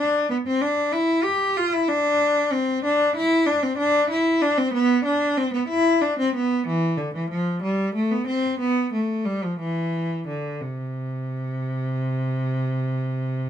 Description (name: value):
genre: classical, baroque-style suite movement for unaccompanied cello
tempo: 58-64 BPM (dotted quarters)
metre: 12/8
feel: rubato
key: C major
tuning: A4 = 440 Hz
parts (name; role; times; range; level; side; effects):
- rich cello; solo; 0.0-13.5 s; C3 to G4; -20 LUFS; equal; none
room: light reverb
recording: close, detailed microphones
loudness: -20 LUFS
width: side -9 dB against mid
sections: 0.0-13.5 A section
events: none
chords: none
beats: 0.00 0.94 1.89 | 2.84 3.79 4.74 5.71 | 6.67 7.63 8.60 9.60 | 10.62 11.64 12.67